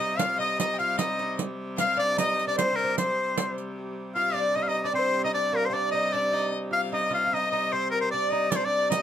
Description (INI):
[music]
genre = medieval dance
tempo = 151 BPM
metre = 3/4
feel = straight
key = C minor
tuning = A4 = 439 Hz
[part]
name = edgy shawm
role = melody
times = 0.0-9.0 s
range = Bb4 to F5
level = -26 LUFS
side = left 1 dB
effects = none
[part]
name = lute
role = second line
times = 0.0-9.0 s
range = Bb3 to F4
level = -32 LUFS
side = right 4 dB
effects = none
[part]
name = rich fiddle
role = second line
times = 0.0-9.0 s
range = Bb4 to G5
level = -32 LUFS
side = left 7 dB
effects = none
[part]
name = rich hurdy-gurdy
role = drone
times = 0.0-9.0 s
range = C3 to G3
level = -34 LUFS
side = left 1 dB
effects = none
[part]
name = riq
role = percussion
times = 0.2-3.7, 8.5-9.0 s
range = none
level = -30 LUFS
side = right 5 dB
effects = none
[sound]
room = moderate booth ambience, RT60 0.2 s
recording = none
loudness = -24 LUFS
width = side -10 dB against mid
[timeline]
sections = 0.0-3.8 A section; 3.8-9.0 A section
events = none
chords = none